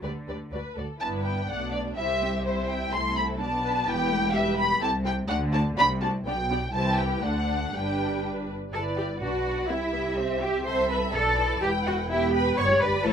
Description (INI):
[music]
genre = quick classical-period movement for string orchestra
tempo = 125 BPM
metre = 2/4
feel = straight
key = G major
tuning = A4 = 440 Hz
[part]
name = dark symphonic violin section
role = melody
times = 0.0-13.1 s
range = C5 to C6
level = -28 LUFS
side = equal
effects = none
[part]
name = rich symphonic violin section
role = second line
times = 0.0-13.1 s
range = D4 to C#6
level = -33 LUFS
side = equal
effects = none
[part]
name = warm symphonic viola section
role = accompaniment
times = 0.0-13.1 s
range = D3 to B4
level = -31 LUFS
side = right 1 dB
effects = none
[part]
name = rich symphonic cello section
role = bass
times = 0.0-13.1 s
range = E2 to C#5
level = -30 LUFS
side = equal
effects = none
[part]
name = warm symphonic double bass section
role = bass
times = 0.0-13.1 s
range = E1 to D2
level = -31 LUFS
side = equal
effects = none
[sound]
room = light reverb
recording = none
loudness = -24 LUFS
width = side -8 dB against mid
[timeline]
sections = 0.0-1.0 A section; 1.0-8.7 B section; 8.7-13.1 B section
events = none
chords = 0.0 G/D; 0.5 D; 1.0 G; 1.5 Bm; 2.0 C; 2.9 Am/C; 3.4 Bm7; 3.9 Em; 4.8 Am7/C; 5.3 D5; 5.8 D7(no3)/C; 6.3 G/B; 6.7 C; 7.2 D; 7.7 G; 9.2 Bm; 9.7 C; 10.7 Amadd9/C; 11.1 Bm7; 11.6 Em; 12.6 G